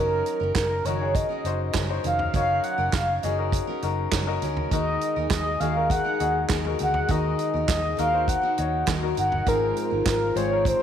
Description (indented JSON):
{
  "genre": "piano-driven pop",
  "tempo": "101 BPM",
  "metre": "4/4",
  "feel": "straight",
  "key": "unclear",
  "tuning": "A4 = 440 Hz",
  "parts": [
    { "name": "mellow horn-like synth lead", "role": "melody", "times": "0.0-10.8 s", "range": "Bb4 to Gb5", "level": "-25 LUFS", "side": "equal", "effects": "chorus" },
    { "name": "clear concert grand piano", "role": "accompaniment", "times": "0.0-10.8 s", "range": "Ab2 to Db5", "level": "-31 LUFS", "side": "left 11 dB", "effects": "none" },
    { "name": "picked steel-string acoustic guitar", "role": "riff", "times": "0.0-10.8 s", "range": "Eb3 to Bb4", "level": "-33 LUFS", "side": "right 13 dB", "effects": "none" },
    { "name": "vintage muted fingered electric bass", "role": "bass", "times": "0.0-10.7 s", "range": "F1 to Eb2", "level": "-29 LUFS", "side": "equal", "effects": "none" },
    { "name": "natural country drum kit", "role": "drums", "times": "0.3-10.8 s", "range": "handclaps, hi-hat, kick drum, snare drum, toms", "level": "-27 LUFS", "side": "right 2 dB", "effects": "none" },
    { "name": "mellow French horn section", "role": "second line", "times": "4.7-10.8 s", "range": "F3 to Ab4", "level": "-32 LUFS", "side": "left 11 dB", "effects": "none" }
  ],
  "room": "moderate echo chamber reverb, RT60 1.5 s, studio reverb",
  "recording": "1960s-style stereo with parts hard left and right",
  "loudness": "-22 LUFS",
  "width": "side -9 dB against mid",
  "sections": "0.0-10.8 A section",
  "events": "none",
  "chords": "0.0 Gb6; 4.7 Ebm; 9.5 Abadd9"
}